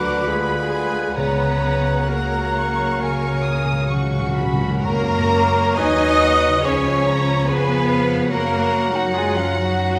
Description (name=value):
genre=classical, slow romantic movement for symphony orchestra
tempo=62-73 BPM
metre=4/4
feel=rubato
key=F# major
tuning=A4 = 440 Hz
part: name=rich studio violin section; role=melody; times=0.0-9.9 s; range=E#5 to D#6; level=-31 LUFS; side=equal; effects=none
part: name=clear clarinet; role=second line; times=0.0-10.0 s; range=C#4 to C#5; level=-31 LUFS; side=equal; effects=none
part: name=clear studio violin section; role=second line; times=0.0-10.0 s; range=E#4 to B5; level=-32 LUFS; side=equal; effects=none
part: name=concert flute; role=second line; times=0.0-10.0 s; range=E#5 to D#6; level=-27 LUFS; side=equal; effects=none
part: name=warm oboe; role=second line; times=0.0-10.0 s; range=E#5 to C#6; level=-32 LUFS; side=equal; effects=none
part: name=mellow bassoon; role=accompaniment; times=0.0-10.0 s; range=C#3 to F#3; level=-30 LUFS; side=equal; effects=none
part: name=rich studio viola section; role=accompaniment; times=0.0-10.0 s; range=E#4 to D#5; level=-28 LUFS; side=equal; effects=none
part: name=warm French horn section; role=sustained chords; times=0.0-10.0 s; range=E#3 to G#4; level=-30 LUFS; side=equal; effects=none
part: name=concert harp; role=arpeggios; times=0.0-10.0 s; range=F#2 to C#5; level=-28 LUFS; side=equal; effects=none
part: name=rich studio cello section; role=bass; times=0.0-10.0 s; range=E#3 to D#4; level=-30 LUFS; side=equal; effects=none
part: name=rich studio double bass section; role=bass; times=0.0-10.0 s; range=C#2 to F#2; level=-30 LUFS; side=equal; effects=none
part: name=timpani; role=percussion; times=1.2-6.2 s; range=F#2 to C#3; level=-29 LUFS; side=equal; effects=none
room=wet concert hall reverb, RT60 2.0 s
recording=none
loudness=-19 LUFS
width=mono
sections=0.0-4.8 A section; 4.8-10.0 B section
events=timpani fill 3.0-4.8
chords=0.0 Bm/D; 1.2 F#/C#; 3.0 C#; 4.8 F#; 6.6 C#7; 8.3 F#